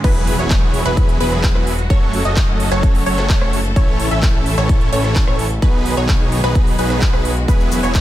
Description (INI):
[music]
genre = EDM, festival progressive house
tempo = 129 BPM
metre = 4/4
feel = straight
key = E major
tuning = A4 = 439 Hz
[part]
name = clear studio string section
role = sustained chords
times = 0.0-8.0 s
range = C#3 to A4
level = -27 LUFS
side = equal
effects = sidechain pumping
[part]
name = wide unison pluck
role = arpeggios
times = 0.0-8.0 s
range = B4 to E5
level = -25 LUFS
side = equal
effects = sidechain pumping, digital delay
[part]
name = supersaw chords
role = riff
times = 0.0-8.0 s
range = E3 to E5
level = -20 LUFS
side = right 1 dB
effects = sidechain pumping, digital delay
[part]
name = fat analog bass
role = bass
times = 0.0-8.0 s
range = E1 to B1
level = -21 LUFS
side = equal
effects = tube saturation, sidechain pumping
[part]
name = big-room dance drum kit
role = drums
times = 0.0-8.0 s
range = crash cymbal, handclaps, hi-hat, rim click, shaker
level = -25 LUFS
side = equal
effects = overdrive, high-pass filter on snare, high-pass filter on hats, high-pass filter on cymbals, high-pass filter on perc, high-pass filter on room
[part]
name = electronic kick drum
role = drums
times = 0.0-8.0 s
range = none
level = -15 LUFS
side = equal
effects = high-pass filter on kick
[part]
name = impact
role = sound effects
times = 0.2-1.9 s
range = none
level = -26 LUFS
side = equal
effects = none
[sound]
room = little or no reverb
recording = none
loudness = -13 LUFS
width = side -14 dB against mid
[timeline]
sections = 0.0-8.0 A section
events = drop 0.0-8.0; impact 0.0-1.9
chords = 0.0 Eadd9; 1.9 F#m; 3.8 A; 5.6 B6; 7.5 Eadd9